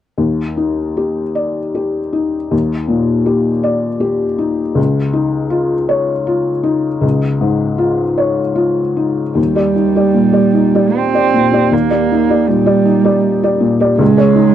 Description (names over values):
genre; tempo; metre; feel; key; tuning
neoclassical piano and strings; 79 BPM; 3/4; rubato; Eb major; A4 = 442 Hz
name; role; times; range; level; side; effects
felt-muted upright piano; accompaniment; 0.2-14.5 s; Db2 to D5; -13 LUFS; left 2 dB; none
dark cello; second line; 9.4-14.5 s; G3 to C4; -13 LUFS; right 9 dB; none
room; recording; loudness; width
light reverb; dry, close 1970s-style studio recording; -12 LUFS; side -10 dB against mid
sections
0.2-9.4 A section; 9.4-14.5 B section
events
none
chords
0.2 Ebmaj7; 4.8 Dbadd9; 9.4 Ebmaj7; 14.0 Dbsus2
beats
| 0.20 0.98 1.75 | 2.52 3.27 4.02 | 4.78 5.53 6.28 | 7.03 7.79 8.57 | 9.37 10.15 10.95 | 11.72 12.49 13.24 | 14.00